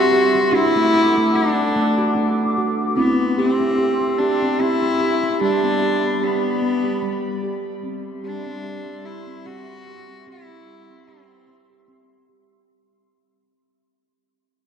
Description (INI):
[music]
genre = world meditative, meditative tuned percussion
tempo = 74 BPM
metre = 3/4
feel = swing 55% on 16ths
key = C lydian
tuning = A4 = 442 Hz
[part]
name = rich cello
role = melody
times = 0.0-11.9 s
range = B3 to F#4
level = -21 LUFS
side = left 3 dB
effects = ping-pong delay
[part]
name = warbly tape-like pad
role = sustained chords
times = 0.0-12.7 s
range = G3 to D6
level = -27 LUFS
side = left 2 dB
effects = chorus, built-in reverb, phaser
[part]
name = steel tongue drum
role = arpeggios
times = 0.0-12.7 s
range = G3 to G4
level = -20 LUFS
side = right 2 dB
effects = ping-pong delay
[sound]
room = wet cathedral reverb, RT60 5.3 s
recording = in a vast, echoing space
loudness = -16 LUFS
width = side -8 dB against mid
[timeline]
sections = 0.0-12.7 A section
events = fade-out 0.0-12.7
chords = 0.0 C; 0.5 D; 3.0 C; 5.4 G; 7.8 C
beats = | 0.53 1.34 2.15 | 2.97 3.78 4.59 | 5.40 6.21 7.02 | 7.83 8.64 9.46 | 10.26 11.07 11.88